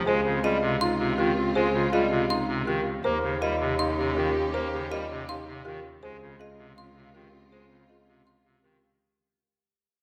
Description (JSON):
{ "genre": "classical, minimalist pattern music", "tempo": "161 BPM", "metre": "4/4", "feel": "straight", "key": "unclear", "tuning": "A4 = 443 Hz", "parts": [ { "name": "pipe organ, clarinet reed", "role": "accompaniment", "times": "0.0-8.8 s", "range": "C3 to Bb3", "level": "-34 LUFS", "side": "equal", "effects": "none" }, { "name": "folk marimba with medium hard mallets", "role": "melody", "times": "0.1-8.9 s", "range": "G4 to F5", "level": "-35 LUFS", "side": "equal", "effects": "none" }, { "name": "mellow clarinet", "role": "second line", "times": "0.1-8.8 s", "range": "F4 to G4", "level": "-34 LUFS", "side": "equal", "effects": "none" }, { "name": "clear studio string section", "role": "sustained chords", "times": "0.1-8.8 s", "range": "C4 to G4", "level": "-37 LUFS", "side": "equal", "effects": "none" }, { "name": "dark grand piano", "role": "arpeggios", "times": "0.1-8.9 s", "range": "Eb4 to Bb4", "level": "-35 LUFS", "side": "equal", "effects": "none" }, { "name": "rich cello", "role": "bass", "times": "0.1-8.9 s", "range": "Db2 to Eb2", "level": "-35 LUFS", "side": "equal", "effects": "none" }, { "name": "xylophone with wooden mallets", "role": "arpeggios", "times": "0.4-8.5 s", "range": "Eb5 to C6", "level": "-35 LUFS", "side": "equal", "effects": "none" } ], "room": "wet scoring stage reverb, RT60 1.9 s", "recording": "none", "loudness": "-26 LUFS", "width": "mono", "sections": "0.0-9.0 A section", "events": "fade-out 0.0-9.0", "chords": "0.1 Dbmaj9; 3.0 Eb9; 6.0 Dbmaj9", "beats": "| 0.07 0.44 0.81 1.18 | 1.55 1.93 2.30 2.67 | 3.05 3.42 3.79 4.16 | 4.54 4.91 5.28 5.66 | 6.03 6.40 6.77 7.14 | 7.52 7.89 8.26 8.64" }